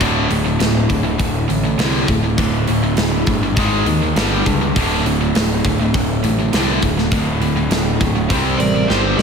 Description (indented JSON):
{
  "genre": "heavy metal",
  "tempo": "101 BPM",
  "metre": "4/4",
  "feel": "straight",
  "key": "unclear",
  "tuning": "A4 = 440 Hz",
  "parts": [
    { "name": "high-gain distorted guitar", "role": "riff", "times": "0.0-9.2 s", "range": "D2 to C4", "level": "-22 LUFS", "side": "left 9 dB", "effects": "distortion" },
    { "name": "overdriven electric guitar", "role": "riff", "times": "0.0-9.2 s", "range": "D2 to C4", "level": "-22 LUFS", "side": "right 1 dB", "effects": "slapback echo" },
    { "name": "tight distorted guitar", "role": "riff", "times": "0.0-9.2 s", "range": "D2 to C4", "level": "-22 LUFS", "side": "right 10 dB", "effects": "distortion" },
    { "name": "fuzz picked electric bass", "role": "bass", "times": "0.0-9.2 s", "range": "D1 to D#2", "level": "-21 LUFS", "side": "equal", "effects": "overdrive" },
    { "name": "tight metal drum kit", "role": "drums", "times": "0.0-9.2 s", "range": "hi-hat, kick drum, snare drum", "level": "-20 LUFS", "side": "equal", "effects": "none" },
    { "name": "dark smooth lead guitar", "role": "melody", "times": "8.6-9.2 s", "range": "C5 to D5", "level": "-20 LUFS", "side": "right 5 dB", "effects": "overdrive, slapback echo" },
    { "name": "high-gain lead guitar", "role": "second line", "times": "8.6-9.2 s", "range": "G4 to Bb4", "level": "-26 LUFS", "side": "right 2 dB", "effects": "distortion, slapback echo" }
  ],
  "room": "light reverb, studio reverb",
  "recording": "none",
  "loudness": "-14 LUFS",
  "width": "side -6 dB against mid",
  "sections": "0.0-9.2 A section",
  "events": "drum fill 8.9-9.2",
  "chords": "0.0 D5; 3.6 G#5; 4.2 G5; 4.7 D5; 8.3 C5",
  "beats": "| 0.00 0.59 1.18 1.78 | 2.37 2.96 3.56 4.15 | 4.74 5.34 5.93 6.52 | 7.11 7.71 8.30 8.89"
}